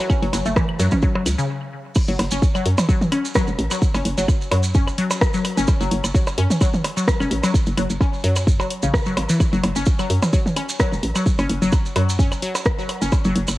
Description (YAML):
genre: minimal techno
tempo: 129 BPM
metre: 4/4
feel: swing 54% on 16ths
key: F# minor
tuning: A4 = 442 Hz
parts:
  - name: resonant blip pluck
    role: riff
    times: 0.0-13.3 s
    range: C#3 to C#4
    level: -24 LUFS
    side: left 2 dB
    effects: phaser, sidechain pumping, tape echo
  - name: maracas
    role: percussion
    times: 0.0-13.6 s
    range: none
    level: -31 LUFS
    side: right 3 dB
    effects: none
  - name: electronic kick drum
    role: drums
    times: 0.1-13.2 s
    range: none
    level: -19 LUFS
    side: equal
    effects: cassette tape
  - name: electronic claves, percussion blips and toms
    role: percussion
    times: 0.1-13.6 s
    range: none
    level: -26 LUFS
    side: right 1 dB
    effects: cassette tape, tape echo
  - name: hollow knocking FM bass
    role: bass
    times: 0.2-13.6 s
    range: E1 to F#2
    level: -21 LUFS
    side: equal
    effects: sidechain pumping
  - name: house drum kit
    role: drums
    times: 0.2-13.5 s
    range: crash cymbal, hi-hat, rim click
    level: -26 LUFS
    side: equal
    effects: cassette tape
room: light reverb, digital ambience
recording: home recording on cassette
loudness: -17 LUFS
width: side -17 dB against mid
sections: 0.0-2.0 A section; 2.0-13.6 B section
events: filter sweep on synth arpeggio sound 0.0-2.0; stop 1.5-2.0; drop 2.0-13.6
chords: 0.0 F#5; 2.0 N.C.